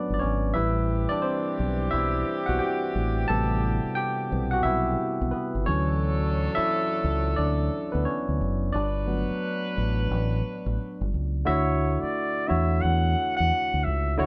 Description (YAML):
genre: R&B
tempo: 88 BPM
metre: 4/4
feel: swing 63% on 16ths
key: D major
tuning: A4 = 440 Hz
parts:
  - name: barky tine electric piano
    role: accompaniment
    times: 0.0-14.3 s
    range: C3 to A5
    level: -30 LUFS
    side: equal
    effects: none
  - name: deep dub fingered electric bass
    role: bass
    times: 0.1-14.3 s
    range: F#1 to E2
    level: -29 LUFS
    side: equal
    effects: none
  - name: warm horn section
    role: stabs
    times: 0.5-11.1 s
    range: E3 to B4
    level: -36 LUFS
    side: equal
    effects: none
  - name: breathy flugelhorn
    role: melody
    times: 11.5-14.3 s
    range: C#5 to F#5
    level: -29 LUFS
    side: equal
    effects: none
room: moderate large studio reverb, RT60 1.2 s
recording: band playing live in one room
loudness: -26 LUFS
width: mono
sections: 0.0-11.5 A section; 11.5-14.3 B section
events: tine electric piano solo 0.0-11.5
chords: 0.0 Gmaj9; 0.5 Am9; 5.7 Dmaj7; 8.7 Gmaj9; 11.5 Dmaj9